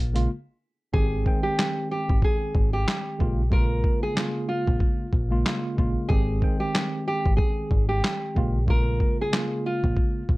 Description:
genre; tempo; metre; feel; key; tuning
hip hop, boom-bap hip-hop; 93 BPM; 4/4; swing 56% on 16ths; Ab major; A4 = 443 Hz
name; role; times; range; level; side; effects
nylon-string guitar; melody; 0.0-10.4 s; F4 to Bb4; -29 LUFS; equal; high-pass filter, low-pass filter, slapback echo
deep dub fingered electric bass; bass; 0.0-10.4 s; Ab1 to Bb1; -25 LUFS; equal; none
mellow tine electric piano; accompaniment; 0.1-10.2 s; Db3 to G5; -30 LUFS; right 1 dB; medium stereo tremolo, cassette tape, high-pass filter, low-pass filter
boom bap sampler-style drum kit; drums; 0.2-10.4 s; handclaps, hi-hat, kick drum, snare drum; -24 LUFS; equal; none
room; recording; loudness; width
light reverb; none; -22 LUFS; side -21 dB against mid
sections
0.9-10.4 A section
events
break 0.3-0.9; hi-hats muted 0.9-10.4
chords
0.0 Bbm7; 0.9 Abmaj7; 3.2 Bbm7; 6.1 Abmaj7; 8.4 Bbm7

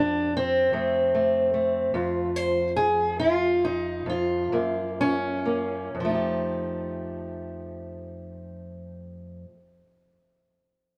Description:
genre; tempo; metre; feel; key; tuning
acoustic country blues, solo or duo; 40-52 BPM (dotted quarters); 12/8; straight; F mixolydian; A4 = 441 Hz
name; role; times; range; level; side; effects
fingerpicked steel-string acoustic guitar; solo; 0.0-9.6 s; F2 to C5; -26 LUFS; equal; tape echo
room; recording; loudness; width
moderate studio reverb, RT60 0.5 s; none; -25 LUFS; mono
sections
0.0-5.9 A section; 5.9-11.0 B section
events
slowing down 0.0-5.9; steel-string acoustic guitar solo 0.0-5.9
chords
0.0 F; 4.5 Gb; 5.9 F9

